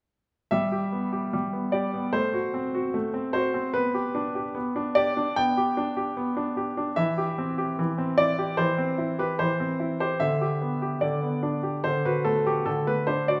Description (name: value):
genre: classical-period piano sonatina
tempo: 74 BPM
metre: 4/4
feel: straight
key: G major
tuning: A4 = 440 Hz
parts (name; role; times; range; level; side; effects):
- clear grand piano; solo; 0.5-13.4 s; D3 to G5; -26 LUFS; equal; none
room: wet recital hall reverb, RT60 1.8 s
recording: none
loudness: -26 LUFS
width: mono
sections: 0.5-13.4 A section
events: none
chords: 0.5 G; 2.1 F#dim/A; 3.8 G/B; 7.0 C/E; 10.2 G/D; 11.9 D